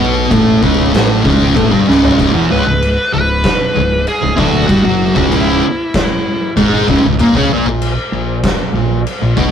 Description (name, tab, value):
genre	stoner and doom metal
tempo	96 BPM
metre	4/4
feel	straight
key	C# dorian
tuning	A4 = 441 Hz
part	thick fuzz guitar	riff	0.0-9.5 s	C#2 to C#4	-12 LUFS	equal	distortion
part	growling fingered electric bass	bass	0.0-9.5 s	C#1 to C#2	-18 LUFS	equal	overdrive
part	oversized low-tuned drum kit	drums	0.3-9.5 s	crash cymbal, kick drum, snare drum, toms	-17 LUFS	equal	none
part	fuzz lead guitar	melody	2.5-6.5 s	E4 to B4	-16 LUFS	equal	wah, distortion
room	light reverb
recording	rough rehearsal-room recording, warm saturation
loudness	-10 LUFS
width	side -8 dB against mid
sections	0.0-2.2 A section; 2.2-9.5 B section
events	drum fill 1.9-2.2; lead electric guitar solo 2.2-9.5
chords	0.0 N.C.; 2.2 C#m; 7.2 A#5